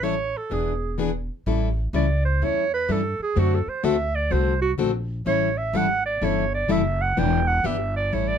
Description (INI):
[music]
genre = acoustic string swing (jazz manouche)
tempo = 126 BPM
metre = 4/4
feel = swing 64% on 8ths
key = A mixolydian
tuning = A4 = 440 Hz
[part]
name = clear clarinet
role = melody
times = 0.0-8.4 s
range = F#4 to G5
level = -24 LUFS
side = right 4 dB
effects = none
[part]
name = picked plugged-in steel-string acoustic guitar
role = accompaniment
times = 0.0-8.3 s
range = D3 to A4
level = -24 LUFS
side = left 6 dB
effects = none
[part]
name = upright bass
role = bass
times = 0.0-8.4 s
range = E1 to G2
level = -25 LUFS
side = equal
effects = none
[sound]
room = light reverb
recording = close, detailed microphones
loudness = -21 LUFS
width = side -8 dB against mid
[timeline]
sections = 0.0-1.5 A section; 1.5-8.4 B section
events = clarinet solo 1.5-8.4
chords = 0.0 A7; 0.5 E7; 1.5 A7; 3.4 D7; 5.3 A7; 7.2 Em7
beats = 0.03 0.51 0.98 | 1.46 1.94 2.41 2.89 | 3.36 3.84 4.32 4.79 | 5.27 5.75 6.22 6.70 | 7.18 7.65 8.13